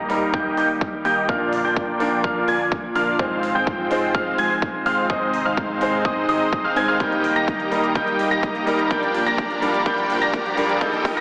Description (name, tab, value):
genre	EDM, festival progressive house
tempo	126 BPM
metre	4/4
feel	straight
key	unclear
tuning	A4 = 441 Hz
part	clear grand piano	accompaniment	0.0-11.2 s	Ab2 to C5	-27 LUFS	equal	sidechain pumping, tape echo
part	lush unison pad	sustained chords	0.0-11.2 s	C3 to G4	-34 LUFS	equal	chorus, phaser, sidechain pumping
part	clear grand piano	arpeggios	0.0-11.2 s	Eb6 to Bb6	-27 LUFS	equal	sidechain pumping, low-pass filter, tape echo
part	supersaw chords	riff	0.0-11.2 s	Ab3 to Bb5	-26 LUFS	equal	sidechain pumping, low-pass filter, tape echo
part	fat analog bass	bass	0.0-11.2 s	Eb1 to Ab2	-42 LUFS	equal	tube saturation, sidechain pumping
part	electronic hi-hat	drums	0.1-11.2 s	none	-46 LUFS	equal	none
part	electronic kick drum	drums	0.3-11.1 s	none	-29 LUFS	equal	none
part	riser	sound effects	9.5-11.2 s	none	-35 LUFS	equal	none
room	wet lush hall reverb, RT60 1.6 s, digital ambience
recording	heavily compressed radio sound, multiband compression, high-pass filter, AM radio sound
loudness	-21 LUFS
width	mono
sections	0.0-11.2 A section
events	build-up 0.0-11.2; filter sweep on supersaw synth 0.0-11.2; filter sweep on grand piano 0.0-11.2; filter sweep on analog synth pad 0.0-11.2; drum fill 7.0-11.2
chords	0.0 Eb; 1.3 Bb; 3.2 Fm/Ab; 5.1 Ab; 7.0 Eb; 8.9 Bb